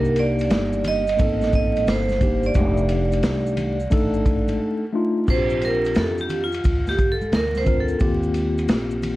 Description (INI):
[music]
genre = hip hop, jazz-hop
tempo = 88 BPM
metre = 4/4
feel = swing 66% on 16ths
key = unclear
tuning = A4 = 439 Hz
[part]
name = vibraphone with hard mallets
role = melody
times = 0.0-8.1 s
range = F4 to Eb5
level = -24 LUFS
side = right 3 dB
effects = none
[part]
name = mellow tine electric piano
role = accompaniment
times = 0.0-9.2 s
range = Ab3 to Bb4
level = -24 LUFS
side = left 2 dB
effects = medium stereo tremolo
[part]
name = upright bass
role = bass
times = 0.0-9.2 s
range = F1 to F2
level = -26 LUFS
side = equal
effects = none
[part]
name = maracas and congas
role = percussion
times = 0.0-9.2 s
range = none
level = -35 LUFS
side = right 1 dB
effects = none
[part]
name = vintage drum kit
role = drums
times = 0.2-9.2 s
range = crash cymbal, hi-hat, kick drum, ride cymbal, snare drum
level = -23 LUFS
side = equal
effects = none
[sound]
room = light reverb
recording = dark, warm production, vinyl crackle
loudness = -18 LUFS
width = side -17 dB against mid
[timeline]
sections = 0.0-5.3 A section; 5.3-9.2 B section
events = break 4.6-5.3; vibraphone solo 5.3-9.2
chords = 0.0 Cm7; 2.6 F13; 5.3 Bb69; 8.0 Eb69